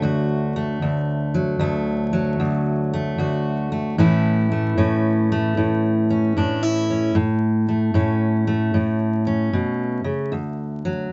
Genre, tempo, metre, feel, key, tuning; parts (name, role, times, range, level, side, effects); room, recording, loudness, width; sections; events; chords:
blues; 76 BPM; 4/4; swing 66% on 8ths; D major; A4 = 440 Hz
fingerpicked steel-string acoustic guitar; solo; 0.0-11.1 s; D2 to F#4; -21 LUFS; equal
moderate booth ambience, RT60 0.2 s; dark, warm production, vinyl crackle, nothing above 7.8 kHz; -21 LUFS; mono
0.0-11.1 A section
0.0 D; 4.0 A; 10.3 D